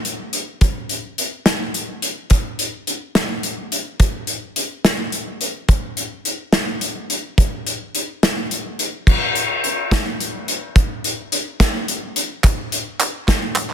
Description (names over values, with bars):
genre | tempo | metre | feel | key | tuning
folk | 71 BPM (dotted quarters) | 6/8 | straight | none | none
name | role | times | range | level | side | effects
loose indie drum kit | drums | 0.0-13.7 s | crash cymbal, hi-hat, kick drum, snare drum | -18 LUFS | equal | none
group handclap | percussion | 12.4-13.7 s | none | -21 LUFS | right 5 dB | none
room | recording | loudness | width
studio reverb | dense, heavily limited modern master | -18 LUFS | side -9 dB against mid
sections
0.0-9.1 A section; 9.1-13.7 B section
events
none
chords
none